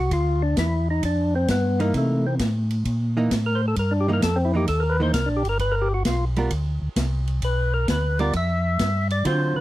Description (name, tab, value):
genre	soul jazz organ trio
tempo	131 BPM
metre	4/4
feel	swing 68% on 8ths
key	unclear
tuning	A4 = 440 Hz
part	percussive tonewheel organ	melody	0.0-9.6 s	A3 to E5	-24 LUFS	left 1 dB	slow rotary speaker, overdrive
part	mellow tonewheel organ	bass	0.0-9.6 s	G1 to D3	-23 LUFS	equal	chorus vibrato, slow rotary speaker
part	swinging big-band drum kit	drums	0.1-9.4 s	hi-hat, kick drum, ride cymbal, snare drum	-29 LUFS	equal	none
part	archtop guitar, miked and amplified	accompaniment	1.8-9.6 s	D3 to A#4	-26 LUFS	right 3 dB	none
room	studio reverb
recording	none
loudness	-20 LUFS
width	side -16 dB against mid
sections	0.0-9.6 A section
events	tonewheel organ solo 0.0-9.6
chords	0.0 G7; 1.9 C7#9; 5.6 G7